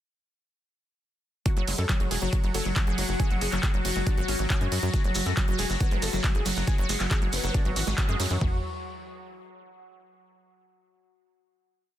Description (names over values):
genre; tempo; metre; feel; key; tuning
psychedelic trance; 138 BPM; 4/4; straight; unclear; A4 = 440 Hz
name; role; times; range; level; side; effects
overdriven synth lead; melody; 1.5-8.6 s; F#3 to A4; -36 LUFS; right 1 dB; distortion, phaser, cassette tape, sidechain pumping, tape echo
overtone-sweeping drone; sustained chords; 2.1-8.4 s; F#3 to F#4; -35 LUFS; left 4 dB; chorus, built-in reverb, sidechain pumping
wide unison pluck; riff; 1.5-8.6 s; E3 to G#3; -34 LUFS; right 1 dB; auto-pan, sidechain pumping, tape echo
drum and bass drum kit; drums; 1.5-8.5 s; kick drum, toms; -25 LUFS; equal; overdrive
drum and bass drum kit; drums; 1.5-8.4 s; handclaps, hi-hat, ride cymbal; -32 LUFS; right 1 dB; overdrive
tight sequencer bass; bass; 1.6-8.6 s; E1 to F#2; -30 LUFS; equal; none
shekere; percussion; 4.9-8.4 s; none; -35 LUFS; right 2 dB; none
formant-sweep wobble bass; second line; 5.8-7.8 s; A3 to B3; -42 LUFS; left 4 dB; chorus, sidechain pumping, high-pass filter, tape echo
room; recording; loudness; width
little or no reverb; dense, heavily limited modern master; -24 LUFS; side -12 dB against mid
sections
1.5-8.4 drop; 8.4-10.2 final chord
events
drop 1.5-8.4; band accent 8.0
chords
1.5 Eadd9 (rootless); 8.4 N.C.